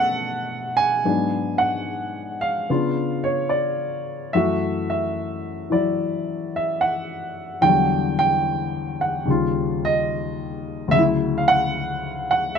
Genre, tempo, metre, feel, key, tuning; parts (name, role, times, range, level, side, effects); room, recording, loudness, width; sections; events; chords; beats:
solo jazz; 73 BPM; 4/4; swing 69% on 8ths; A4 = 439 Hz
warm baby grand piano; solo; 0.0-12.6 s; D2 to A5; -20 LUFS; equal
little or no reverb; close, detailed microphones; -20 LUFS; side -6 dB against mid
0.0-12.6 A section
0.0 Bm11; 1.0 G#m7b5; 2.7 C#7b9; 4.3 F#m7; 7.6 Em9; 9.3 Eb9; 10.9 Dmaj9
0.22 | 1.04 1.86 2.69 3.51 | 4.33 5.16 5.98 6.80 | 7.62 8.45 9.27 10.09 | 10.92 11.74 12.56